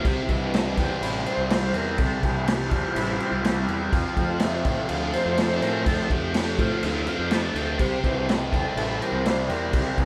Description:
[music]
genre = psychedelic rock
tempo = 124 BPM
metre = 4/4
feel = straight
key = C mixolydian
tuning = A4 = 439 Hz
[part]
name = combo organ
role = sustained chords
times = 0.0-10.1 s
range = E3 to C5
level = -31 LUFS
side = equal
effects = none
[part]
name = fuzz guitar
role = riff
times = 0.0-10.1 s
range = C3 to F4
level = -30 LUFS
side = equal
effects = distortion, phaser
[part]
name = fuzz fingered electric bass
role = bass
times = 0.0-10.1 s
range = A1 to A2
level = -32 LUFS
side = equal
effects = overdrive
[part]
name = vintage drum kit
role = drums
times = 0.0-10.1 s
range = crash cymbal, kick drum, snare drum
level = -29 LUFS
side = equal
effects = none
[sound]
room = moderate studio reverb, RT60 0.8 s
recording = band playing live in one room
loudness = -24 LUFS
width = mono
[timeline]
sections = 0.0-10.1 A section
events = transistor combo organ solo 0.0-10.1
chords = 0.1 C; 3.9 F; 7.8 C

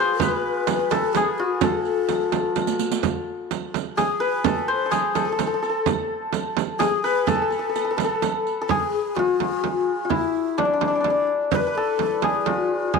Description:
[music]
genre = Persian modal ensemble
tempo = 85 BPM (dotted quarters)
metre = 6/8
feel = straight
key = A avaz esfahan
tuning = A4 = 440 Hz
[part]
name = santur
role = melody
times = 0.0-13.0 s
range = D4 to C5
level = -23 LUFS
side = left 2 dB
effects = none
[part]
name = breathy low ney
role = second line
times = 0.0-13.0 s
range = D4 to C5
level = -27 LUFS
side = left 12 dB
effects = none
[part]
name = frame drum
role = percussion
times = 0.2-13.0 s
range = none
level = -25 LUFS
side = right 14 dB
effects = none
[part]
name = riq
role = percussion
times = 0.2-8.5 s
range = none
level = -32 LUFS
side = right 17 dB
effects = none
[sound]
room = light reverb, studio reverb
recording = 1960s-style stereo with parts hard left and right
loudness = -20 LUFS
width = side -4 dB against mid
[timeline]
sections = 0.0-8.7 A section; 8.7-13.0 B section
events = drum fill 2.6-3.0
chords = none

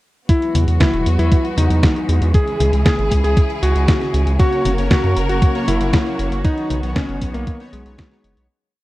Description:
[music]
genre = italo disco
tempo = 117 BPM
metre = 4/4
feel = straight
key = B major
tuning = A4 = 441 Hz
[part]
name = warm electric grand piano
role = melody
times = 0.3-8.4 s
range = G#3 to G#4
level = -22 LUFS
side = left 1 dB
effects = tape echo
[part]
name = warm studio string section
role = sustained chords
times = 0.3-8.5 s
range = C#3 to A#4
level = -24 LUFS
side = equal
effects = none
[part]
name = dusty soul sampler-style drum kit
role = drums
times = 0.3-8.5 s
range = hi-hat, snare drum, toms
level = -22 LUFS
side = left 1 dB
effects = none
[part]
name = electronic kick drum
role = drums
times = 0.3-8.1 s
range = none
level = -16 LUFS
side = equal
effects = none
[part]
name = round analog bass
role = bass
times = 0.5-8.5 s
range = E1 to F#2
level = -18 LUFS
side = equal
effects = none
[part]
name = analog synth brass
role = stabs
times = 4.4-8.5 s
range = A#3 to C#5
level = -27 LUFS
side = left 2 dB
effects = chorus
[sound]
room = little or no reverb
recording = dry, close 1970s-style studio recording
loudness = -14 LUFS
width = side -18 dB against mid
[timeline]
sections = 0.3-8.5 verse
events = fade-out 5.8-8.5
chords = 0.3 Eadd9; 2.3 C#m; 4.4 F#; 6.4 Badd9

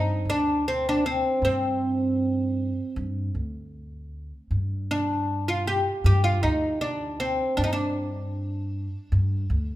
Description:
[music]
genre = Arabic maqam ensemble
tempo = 78 BPM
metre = 4/4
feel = straight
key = unclear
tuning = A4 = 440 Hz
[part]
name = oud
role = melody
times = 0.0-9.8 s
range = C4 to G4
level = -25 LUFS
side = equal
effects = none
[part]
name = upright bass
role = bass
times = 0.0-9.8 s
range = D2 to G2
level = -27 LUFS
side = equal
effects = none
[sound]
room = moderate recital hall reverb, RT60 1.7 s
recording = minimal, uncompressed stereo recording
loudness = -23 LUFS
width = side -14 dB against mid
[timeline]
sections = 0.0-9.8 A section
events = none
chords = none

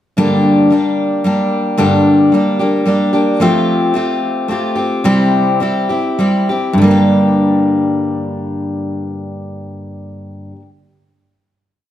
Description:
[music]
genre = rock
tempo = 95-112 BPM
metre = 3/4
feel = straight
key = G dorian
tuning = A4 = 439 Hz
[part]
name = picked steel-string acoustic guitar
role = solo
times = 0.2-10.7 s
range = G2 to G4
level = -12 LUFS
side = equal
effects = none
[sound]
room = wet large studio reverb, RT60 1.4 s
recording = none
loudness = -11 LUFS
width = side -12 dB against mid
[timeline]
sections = 0.2-6.8 verse; 6.8-10.6 final chord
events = slowing down 3.4-6.8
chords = 0.2 Gm; 3.4 Fadd9; 5.0 C; 6.8 Gm

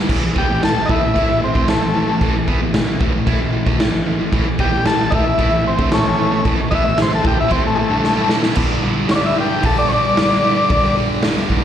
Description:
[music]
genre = garage rock duo or trio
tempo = 113 BPM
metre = 4/4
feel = straight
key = unclear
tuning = A4 = 440 Hz
[part]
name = thick fuzz guitar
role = riff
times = 0.0-11.6 s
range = G2 to E4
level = -19 LUFS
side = right 1 dB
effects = distortion, slapback echo
[part]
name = raw garage drum kit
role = drums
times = 0.1-11.6 s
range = crash cymbal, hi-hat, kick drum, snare drum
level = -18 LUFS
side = equal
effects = none
[part]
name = overdriven combo organ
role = melody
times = 0.4-11.0 s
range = G#3 to E5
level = -18 LUFS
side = left 2 dB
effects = slapback echo
[sound]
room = light reverb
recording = live gig heard through the venue's PA, recital hall reverb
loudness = -14 LUFS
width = side -10 dB against mid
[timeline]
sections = 0.1-8.6 A section; 8.6-11.6 B section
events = drum fill 8.0-8.6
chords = 0.1 A5; 8.6 G5

